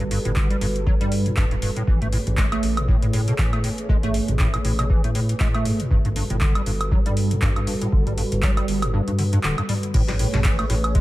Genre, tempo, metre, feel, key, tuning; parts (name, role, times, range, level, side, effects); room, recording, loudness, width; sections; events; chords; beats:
acid house; 119 BPM; 4/4; swing 57% on 16ths; A mixolydian; A4 = 445 Hz
dark analog pad; sustained chords; 0.0-11.0 s; G3 to C#5; -29 LUFS; right 1 dB; chorus, sidechain pumping
acid bass, square; riff; 0.0-11.0 s; G2 to A3; -26 LUFS; equal; ensemble chorus, cassette tape, sidechain pumping, ping-pong delay
round analog bass; bass; 0.0-11.0 s; D1 to A2; -25 LUFS; equal; sidechain pumping
booming analog drum machine; drums; 0.0-11.0 s; crash cymbal, handclaps, hi-hat, snare drum, toms, woodblock; -27 LUFS; right 1 dB
electronic kick drum; drums; 0.4-11.0 s; -22 LUFS; equal
digital ambience; -19 LUFS; side -17 dB against mid
0.0-9.9 A section; 9.9-11.0 B section
kick drops out 8.9-9.9; drop 9.9-11.0
0.0 Gmaj9; 1.9 Amaj9; 5.9 Gmaj9; 9.9 Amaj9
0.36 0.87 1.37 | 1.88 2.38 2.88 3.39 | 3.89 4.40 4.90 5.40 | 5.91 6.41 6.92 7.42 | 7.92 8.43 8.93 9.44 | 9.94 10.45 10.95